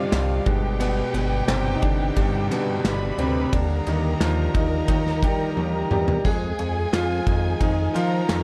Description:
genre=piano-driven pop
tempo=88 BPM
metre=4/4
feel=straight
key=unclear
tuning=A4 = 443 Hz
part: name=warm studio violin section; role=second line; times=0.0-8.4 s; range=F4 to B5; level=-34 LUFS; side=equal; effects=none
part: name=bright upright piano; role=accompaniment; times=0.0-8.4 s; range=G2 to Ab4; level=-27 LUFS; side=equal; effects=none
part: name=glass harmonica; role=sustained chords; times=0.0-8.4 s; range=Bb4 to Eb6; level=-40 LUFS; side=equal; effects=none
part: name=chorused synth bass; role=bass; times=0.0-8.4 s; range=G1 to F3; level=-28 LUFS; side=equal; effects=none
part: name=loose indie drum kit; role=drums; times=0.1-8.4 s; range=handclaps, kick drum, ride cymbal, snare drum, splash cymbal, toms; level=-28 LUFS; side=equal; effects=none
room=small room ambience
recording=dark, warm production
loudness=-23 LUFS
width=mono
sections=0.0-8.4 A section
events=upright piano solo 0.0-8.4; drum fill 5.6-6.2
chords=0.5 G; 3.5 Eb; 6.2 Fm7

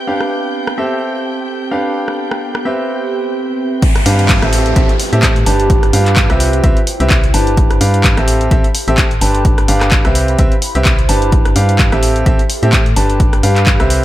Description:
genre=piano house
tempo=128 BPM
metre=4/4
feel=swing 56% on 16ths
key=G mixolydian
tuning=A4 = 440 Hz
part: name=warm studio violin section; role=sustained chords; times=0.0-3.8 s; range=G5 to G6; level=-26 LUFS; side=left 2 dB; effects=sidechain pumping
part: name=bright upright piano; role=riff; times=0.0-14.0 s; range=C4 to A5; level=-17 LUFS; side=right 1 dB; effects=sidechain pumping
part: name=warbly tape-like pad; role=texture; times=0.0-14.0 s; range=C4 to B5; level=-22 LUFS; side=right 2 dB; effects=chorus, built-in reverb, phaser, sidechain pumping
part: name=punchy analog drum machine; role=drums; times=0.2-14.0 s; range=handclaps, hi-hat, rim click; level=-18 LUFS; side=left 1 dB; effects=none
part: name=electronic kick drum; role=drums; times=3.8-13.8 s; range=none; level=-13 LUFS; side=equal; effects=none
part: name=downlifter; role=sound effects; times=3.8-7.6 s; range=none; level=-24 LUFS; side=equal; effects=none
part: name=organ-like FM bass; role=bass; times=4.1-14.0 s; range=G1 to A2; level=-15 LUFS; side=equal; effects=tube saturation, sidechain pumping
room=light reverb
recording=none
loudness=-10 LUFS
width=side -14 dB against mid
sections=0.0-3.8 A section; 3.8-14.0 B section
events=drop 3.8-14.0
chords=0.1 G7; 0.8 Am7; 1.7 G7; 2.7 Cmaj7; 3.8 G7; 4.5 Am7; 5.5 G7; 6.4 Cmaj7; 7.6 G7; 8.3 Am7; 9.2 G7; 10.2 Cmaj7; 11.3 G7; 12.0 Am7; 13.0 G7

